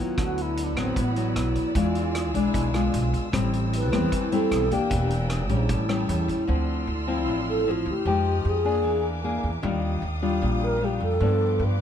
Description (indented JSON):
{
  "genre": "bossa nova",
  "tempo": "152 BPM",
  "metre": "4/4",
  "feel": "straight",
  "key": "A minor",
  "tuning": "A4 = 440 Hz",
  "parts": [
    { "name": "breathy mellow wooden-headed alto flute", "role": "melody", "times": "0.0-11.8 s", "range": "B3 to B4", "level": "-28 LUFS", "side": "equal", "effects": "none" },
    { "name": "nylon-string guitar", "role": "accompaniment", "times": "0.0-11.8 s", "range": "G2 to Ab4", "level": "-26 LUFS", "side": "left 3 dB", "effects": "none" },
    { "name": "warm studio string section", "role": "sustained chords", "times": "0.2-11.8 s", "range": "C4 to F6", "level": "-36 LUFS", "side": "right 1 dB", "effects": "none" },
    { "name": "upright bass", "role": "bass", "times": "0.2-11.8 s", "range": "E1 to G2", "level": "-26 LUFS", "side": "right 1 dB", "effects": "none" },
    { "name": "vintage drum kit", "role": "drums", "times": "0.2-6.4 s", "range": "hi-hat, kick drum, rim click", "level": "-32 LUFS", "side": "right 1 dB", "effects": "none" }
  ],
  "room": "little or no reverb",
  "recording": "dark, warm production",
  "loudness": "-22 LUFS",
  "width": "side -9 dB against mid",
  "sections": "0.0-6.5 A section; 6.5-11.8 A section",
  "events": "alto flute solo 0.0-11.8",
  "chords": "0.2 D69; 1.8 E7b9; 3.3 Am7; 4.9 Em7b5; 5.7 A7; 6.5 Dm9; 8.1 Fm9; 8.8 E7#11; 9.6 Ebmaj9; 11.2 G7"
}